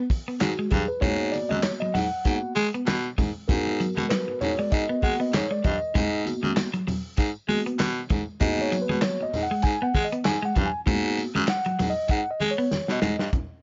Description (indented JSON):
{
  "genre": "funk",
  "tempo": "98 BPM",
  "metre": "4/4",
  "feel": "swing 56% on 16ths",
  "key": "G# minor",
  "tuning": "A4 = 442 Hz",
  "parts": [
    { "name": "clean electric guitar", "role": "riff", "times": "0.0-13.2 s", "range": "F#3 to B3", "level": "-32 LUFS", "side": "equal", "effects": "harmonic tremolo" },
    { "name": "warm soul drum kit", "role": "drums", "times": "0.1-13.5 s", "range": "handclaps, hi-hat, kick drum, snare drum", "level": "-29 LUFS", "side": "equal", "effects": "none" },
    { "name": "congas", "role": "percussion", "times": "0.1-13.5 s", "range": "none", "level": "-37 LUFS", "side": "equal", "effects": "none" },
    { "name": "tambourine", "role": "percussion", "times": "0.1-13.2 s", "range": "none", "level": "-48 LUFS", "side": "equal", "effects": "none" },
    { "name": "mellow tine electric piano", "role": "stabs", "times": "0.4-13.3 s", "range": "A#3 to G#5", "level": "-30 LUFS", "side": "equal", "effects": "none" },
    { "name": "breathy baritone saxophone", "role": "bass", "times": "0.4-13.3 s", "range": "F#2 to G#3", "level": "-30 LUFS", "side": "equal", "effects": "none" }
  ],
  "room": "light reverb",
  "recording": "nothing above 7.6 kHz",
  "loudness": "-25 LUFS",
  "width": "mono",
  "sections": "0.0-13.3 A section",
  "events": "tine electric piano solo 0.0-13.3; drum fill 12.7-13.3",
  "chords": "0.0 G#m7",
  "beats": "0.41 | 1.03 1.64 2.26 2.88 | 3.49 4.11 4.72 5.33 | 5.95 6.57 7.18 7.79 | 8.41 9.02 9.64 10.25 | 10.87 11.48 12.10 12.71 | 13.33"
}